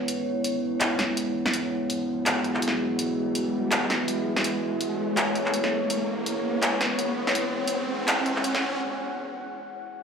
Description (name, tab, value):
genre	half-time drum and bass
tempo	165 BPM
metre	4/4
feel	swing 57% on 16ths, half-time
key	C# minor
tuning	A4 = 441 Hz
part	deep dark ambient pad	sustained chords	0.0-10.0 s	G#3 to F#5	-29 LUFS	equal	chorus, built-in reverb, vintage 12-bit sampler grit
part	riser	sound effects	1.0-8.8 s	none	-32 LUFS	right 1 dB	none
part	metallic inharmonic drone	texture	0.0-8.8 s	B3	-32 LUFS	left 1 dB	chorus, built-in reverb
part	drum and bass drum kit	drums	0.1-8.6 s	handclaps, hi-hat, snare drum	-26 LUFS	equal	high-pass filter on snare, high-pass filter on hats, high-pass filter on room
room	moderate digital room reverb, RT60 1.0 s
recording	played on a big sound system in a bare room, large studio reverb, high-pass filter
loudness	-24 LUFS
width	side -6 dB against mid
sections	0.0-10.0 A section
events	build-up 0.0-10.0; riser 1.0-8.8; break 8.8-10.0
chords	0.0 C#m